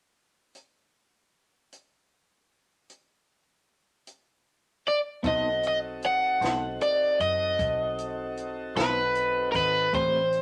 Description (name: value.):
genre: slow blues.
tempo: 51 BPM (dotted quarters).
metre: 12/8.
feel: straight.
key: unclear.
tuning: A4 = 444 Hz.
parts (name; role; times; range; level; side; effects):
compact cocktail drum kit; drums; 0.5-10.4 s; hi-hat, kick drum, snare drum; -37 LUFS; equal; none.
overdriven semi-hollow guitar; melody; 4.9-10.4 s; A#4 to F#5; -27 LUFS; equal; none.
clean electric guitar; accompaniment; 5.2-10.2 s; A3 to C5; -35 LUFS; equal; tremolo.
tonewheel organ; sustained chords; 5.2-10.4 s; C4 to C5; -38 LUFS; equal; slow rotary speaker.
vintage muted fingered electric bass; bass; 5.2-10.4 s; G#1 to F#2; -40 LUFS; equal; none.
room: moderate studio reverb, RT60 0.7 s.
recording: lossy compression artefacts.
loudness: -27 LUFS.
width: mono.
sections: 0.5-5.2 A section; 5.2-10.4 B section.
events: none.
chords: 0.5 N.C.; 5.2 B7b9.